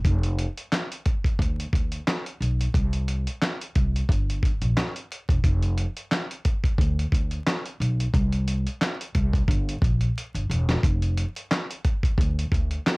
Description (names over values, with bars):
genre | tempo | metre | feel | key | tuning
hip hop, boom-bap hip-hop | 89 BPM | 4/4 | swing 55% on 16ths | unclear | A4 = 442 Hz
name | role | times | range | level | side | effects
upright bass | bass | 0.0-12.8 s | E1 to D2 | -24 LUFS | equal | none
dusty soul sampler-style drum kit | drums | 0.0-13.0 s | handclaps, hi-hat, kick drum, snare drum | -24 LUFS | equal | cassette tape
room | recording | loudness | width
little or no reverb | home recording on cassette, vinyl crackle | -22 LUFS | side -29 dB against mid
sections
0.0-10.8 A section; 10.8-13.0 B section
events
drum fill 10.2-10.8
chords
none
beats
| 0.05 0.72 1.40 2.07 | 2.74 3.42 4.09 4.77 | 5.44 6.11 6.79 7.46 | 8.14 8.81 9.48 10.16 | 10.83 11.51 12.18 12.86